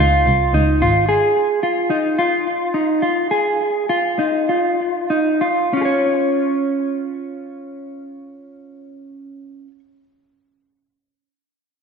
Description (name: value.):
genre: dream pop.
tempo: 94-110 BPM.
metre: 4/4.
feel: straight.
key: Db major.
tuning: A4 = 440 Hz.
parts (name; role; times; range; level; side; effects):
mellow electric guitar; arpeggios; 0.0-9.8 s; Db4 to Db5; -17 LUFS; equal; wide subtle chorus, ping-pong delay.
rich double bass; bass; 0.0-1.0 s; Ab1 to Db2; -17 LUFS; equal; none.
room: wet concert hall reverb, RT60 2.2 s.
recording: none.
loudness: -16 LUFS.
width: side -5 dB against mid.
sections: 0.0-5.7 A section; 5.7-10.9 B section.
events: slowing down 1.1-5.7.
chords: 0.0 Dbmaj7; 1.1 Ebsus24; 5.7 Db.